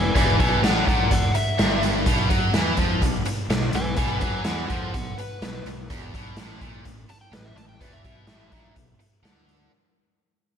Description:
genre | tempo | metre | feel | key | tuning
blues rock power trio and southern rock | 126 BPM | 4/4 | straight | E mixolydian | A4 = 440 Hz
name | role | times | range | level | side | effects
overdriven slide guitar | melody | 0.0-8.7 s | A4 to A5 | -28 LUFS | left 1 dB | analog delay
tight distorted guitar | riff | 0.0-9.7 s | E2 to F#3 | -27 LUFS | equal | distortion, slapback echo
fuzz fingered electric bass | bass | 0.0-9.7 s | E1 to F#2 | -29 LUFS | equal | overdrive
raw garage drum kit | drums | 0.2-9.6 s | hi-hat, kick drum, snare drum | -24 LUFS | equal | none
room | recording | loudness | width
light reverb, small room ambience | none | -20 LUFS | side -8 dB against mid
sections
0.0-9.7 A section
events
fade-out 0.0-9.7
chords
0.0 E5; 2.1 B5; 5.9 E5; 6.9 Emadd11/A (rootless); 7.8 E5; 8.8 Bm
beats
| 0.15 0.63 1.11 1.59 | 2.07 2.55 3.03 3.51 | 3.98 4.46 4.94 5.42 | 5.90 6.38 6.85 7.33 | 7.81 8.29 8.76 9.24

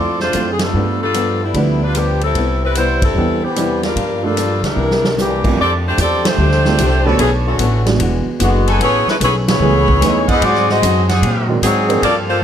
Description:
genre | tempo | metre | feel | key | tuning
jazz, big band swing | 149 BPM | 4/4 | swing 67% on 8ths | C major | A4 = 438 Hz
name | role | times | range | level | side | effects
clear saxophone section | melody | 0.0-12.4 s | D3 to Eb5 | -17 LUFS | left 1 dB | none
archtop guitar, miked and amplified | accompaniment | 0.0-12.3 s | G2 to C#5 | -24 LUFS | left 4 dB | none
dark baby grand piano | accompaniment | 0.0-12.0 s | F2 to C5 | -21 LUFS | right 5 dB | none
upright bass | bass | 0.0-12.4 s | E1 to Bb2 | -18 LUFS | equal | none
swinging big-band drum kit | drums | 0.2-12.2 s | crash cymbal, hi-hat, kick drum, ride cymbal, snare drum | -22 LUFS | right 1 dB | none
bright trumpet section | stabs | 7.1-12.4 s | G4 to A5 | -22 LUFS | right 2 dB | none
room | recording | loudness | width
moderate large studio reverb, RT60 1.4 s | none | -13 LUFS | side -9 dB against mid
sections
0.0-5.6 A section; 5.6-12.4 B section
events
band accent 0.5, 3.0, 6.2, 9.4; drum fill 4.8-5.2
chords
0.0 Dm7; 0.7 G7; 2.4 Cmaj7; 4.0 Gm7; 4.8 C9; 5.6 F69; 7.2 Bm9; 8.0 E9; 8.8 Amaj9; 10.4 Ab7#11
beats
0.34 | 0.74 1.15 1.55 1.96 | 2.36 2.76 3.17 3.57 | 3.97 4.38 4.78 5.18 | 5.58 5.99 6.39 6.79 | 7.20 7.60 8.00 8.40 | 8.80 9.21 9.61 10.01 | 10.41 10.82 11.22 11.62 | 12.02 12.43

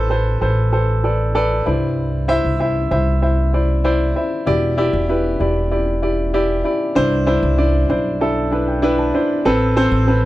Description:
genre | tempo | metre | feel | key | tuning
piano-driven pop | 96 BPM | 4/4 | straight | C major | A4 = 440 Hz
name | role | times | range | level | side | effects
warm concert grand piano | accompaniment | 0.0-10.3 s | G2 to B5 | -17 LUFS | equal | none
upright bass | bass | 0.0-10.3 s | E1 to C2 | -19 LUFS | equal | none
room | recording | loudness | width
light reverb | dry, close 1970s-style studio recording | -15 LUFS | side -16 dB against mid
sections
0.0-10.3 A section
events
grand piano fill 7.6-9.5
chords
0.0 Amadd9; 1.7 Cadd9; 4.5 Em7; 7.0 Cadd9; 9.5 Amadd9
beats
0.11 0.73 1.35 | 1.98 2.60 3.23 3.85 | 4.47 5.09 5.72 6.34 | 6.96 7.59 8.21 8.83 | 9.46 10.08

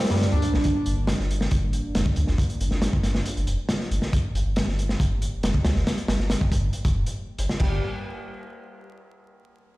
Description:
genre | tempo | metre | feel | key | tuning
breakbeat, breaks | 138 BPM | 4/4 | straight | G minor | A4 = 439 Hz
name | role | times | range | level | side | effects
lush unison pad | sustained chords | 0.0-7.8 s | G3 to G4 | -37 LUFS | equal | chorus, vintage 12-bit sampler grit, sidechain pumping
overdriven synth lead | riff | 0.0-0.6, 7.6-7.8 s | G3 to D4 | -29 LUFS | right 2 dB | distortion, phaser, digital delay
crunchy breakbeat drum kit | drums | 0.0-7.7 s | crash cymbal, hi-hat, kick drum, snare drum | -25 LUFS | equal | none
dark detuned saw bass | bass | 0.1-7.8 s | F1 to G2 | -24 LUFS | equal | none
room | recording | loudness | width
studio reverb | played on a big sound system in a bare room, large studio reverb, vinyl crackle | -22 LUFS | side -19 dB against mid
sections
0.0-7.6 A section; 7.6-9.3 B section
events
filter sweep on analog synth pad 0.0-7.6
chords
0.0 Gm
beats
0.21 | 0.65 1.08 1.52 1.95 | 2.39 2.82 3.26 3.69 | 4.13 4.56 5.00 5.43 | 5.87 6.30 6.74 7.17 | 7.61

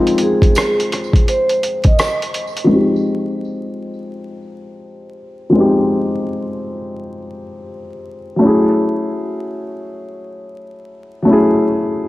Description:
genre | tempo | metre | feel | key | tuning
lo-fi hip hop | 84 BPM | 4/4 | swing 62% on 16ths | unclear | A4 = 440 Hz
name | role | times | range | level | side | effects
dark upright piano | accompaniment | 0.0-12.1 s | F3 to Ab4 | -16 LUFS | left 1 dB | low-pass filter
dusty soul sampler-style drum kit | drums | 0.1-2.7 s | hi-hat, kick drum, rim click | -15 LUFS | equal | overdrive
vibraphone with soft mallets | melody | 0.2-2.2 s | Ab4 to Eb5 | -20 LUFS | right 1 dB | low-pass filter, tape echo
tambourine | percussion | 0.6-2.2 s | none | -36 LUFS | right 7 dB | tape echo
room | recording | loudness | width
moderate echo chamber reverb, RT60 2.2 s | echo-heavy mix, vinyl crackle | -13 LUFS | side -17 dB against mid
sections
0.0-2.7 A section; 2.7-12.1 B section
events
filter sweep on upright piano 2.7-12.1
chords
0.0 Fm7; 8.4 Gbm7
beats
0.56 1.27 1.98 | 2.70 3.41 4.13 4.84 | 5.55 6.27 6.98 7.70 | 8.41 9.13 9.84 10.55 | 11.27 11.98

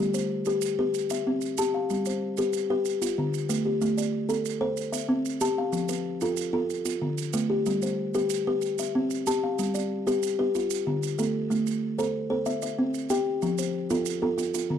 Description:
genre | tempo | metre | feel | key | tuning
southern african traditional, mbira-style interlocking cycle | 125 BPM (dotted quarters) | 12/8 | straight | G mixolydian | A4 = 443 Hz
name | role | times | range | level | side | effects
buzzing kalimba | arpeggios | 0.0-14.8 s | D3 to A5 | -25 LUFS | left 1 dB | none
maracas | percussion | 0.1-14.7 s | none | -37 LUFS | right 30 dB | none
room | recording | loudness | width
light reverb | dry, close 1970s-style studio recording | -25 LUFS | side -9 dB against mid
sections
0.0-9.6 A section; 9.6-14.8 B section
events
none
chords
0.0 G; 0.9 C; 1.9 G; 2.9 Dm; 3.8 Am; 4.8 C; 5.7 F; 6.7 Dm; 7.7 G; 8.6 C; 9.6 G; 10.5 Dm; 11.5 Am; 12.5 C; 13.4 F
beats
0.46 0.94 1.42 | 1.90 2.38 2.86 3.34 | 3.81 4.29 4.78 5.25 | 5.74 6.21 6.70 7.18 | 7.66 8.14 8.62 9.10 | 9.58 10.06 10.54 11.03 | 11.51 11.99 12.47 12.95 | 13.43 13.91 14.39

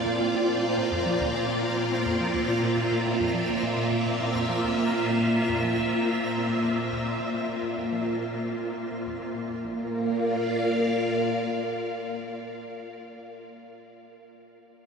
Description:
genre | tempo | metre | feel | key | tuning
ambient, sequencer-driven space music | 105 BPM | 4/4 | straight | Bb lydian | A4 = 437 Hz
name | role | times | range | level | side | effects
phased string machine | sustained chords | 0.0-12.7 s | Bb2 to F5 | -25 LUFS | equal | ensemble chorus, phaser
vibraphone with medium hard mallets | arpeggios | 0.0-9.9 s | A3 to Bb4 | -39 LUFS | equal | none
twinkling granular texture | texture | 0.0-9.7 s | C4 to Bb5 | -35 LUFS | right 1 dB | built-in reverb
analog pluck | riff | 0.1-9.9 s | Bb1 to F3 | -36 LUFS | equal | chorus, analog delay
room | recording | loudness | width
wet huge ambient reverb, RT60 7.7 s | dreamy mix soaked in reverb, lossy compression artefacts | -24 LUFS | side -6 dB against mid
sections
0.0-9.6 A section; 9.6-11.9 B section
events
fade-out on synth arpeggio sound 0.0-9.6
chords
0.0 Bb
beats
| 0.49 1.06 1.63 2.20 | 2.77 3.34 3.92 4.49 | 5.06 5.63 6.20 6.77 | 7.34 7.92 8.49 9.06 | 9.63 10.20 10.77 11.34

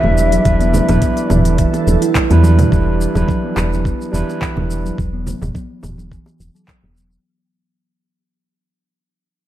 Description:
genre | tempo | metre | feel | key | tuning
organic downtempo | 106 BPM | 4/4 | swing 53% on 16ths | unclear | A4 = 439 Hz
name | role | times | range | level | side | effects
breathy mellow bansuri | melody | 0.0-2.1 s | E5 | -21 LUFS | left 1 dB | vintage 12-bit sampler grit, ping-pong delay
overdriven tine electric piano | accompaniment | 0.0-5.0 s | G3 to B4 | -22 LUFS | right 3 dB | sidechain pumping, tape echo
airy breathy pad | sustained chords | 0.0-2.7 s | E3 to D5 | -27 LUFS | right 1 dB | chorus, phaser, sidechain pumping
steel tongue drum | arpeggios | 0.0-7.2 s | E3 to E4 | -21 LUFS | right 2 dB | low-pass filter, tape echo
woody FM bass | bass | 0.0-7.2 s | E1 to E2 | -15 LUFS | equal | none
congas and bongos | percussion | 0.0-6.9 s | none | -24 LUFS | right 2 dB | none
bronze singing bowl | texture | 0.0-2.7 s | D4 to G4 | -37 LUFS | left 6 dB | none
organic electronic drum kit | drums | 0.2-7.2 s | handclaps, hi-hat, shaker, toms | -24 LUFS | equal | overdrive
electronic kick drum | drums | 0.5-6.8 s | none | -19 LUFS | equal | none
room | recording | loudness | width
light reverb, small room ambience | none | -13 LUFS | side -13 dB against mid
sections
0.0-2.7 A section; 2.7-7.2 B section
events
drum fill 2.2-2.7; fade-out 2.7-7.2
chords
0.0 Em7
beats
| 0.45 1.02 1.59 2.15 | 2.72 3.28 3.85 4.42 | 4.98 5.55 6.11 6.68

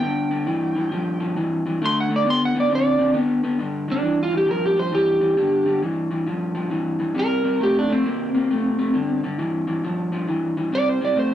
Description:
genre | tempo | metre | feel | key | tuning
blues | 135 BPM | 4/4 | swing 64% on 8ths | G minor | A4 = 439 Hz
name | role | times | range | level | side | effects
electric slide guitar | melody | 0.0-11.3 s | C4 to C6 | -21 LUFS | right 1 dB | none
electric guitar through a small old amp | riff | 0.0-11.3 s | G2 to C4 | -22 LUFS | left 1 dB | none
room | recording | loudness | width
wet studio reverb, RT60 0.6 s | rough rehearsal-room recording | -19 LUFS | side -11 dB against mid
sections
0.0-3.6 A section; 3.6-11.3 B section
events
electric slide guitar solo 0.0-3.6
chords
0.0 G5; 1.8 D5; 3.6 G5; 7.2 C5; 8.9 G5; 10.7 C5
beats
| 0.03 0.47 0.92 1.36 | 1.81 2.25 2.70 3.14 | 3.59 4.03 4.48 4.92 | 5.37 5.82 6.26 6.71 | 7.16 7.60 8.05 8.49 | 8.94 9.38 9.83 10.28 | 10.72 11.17

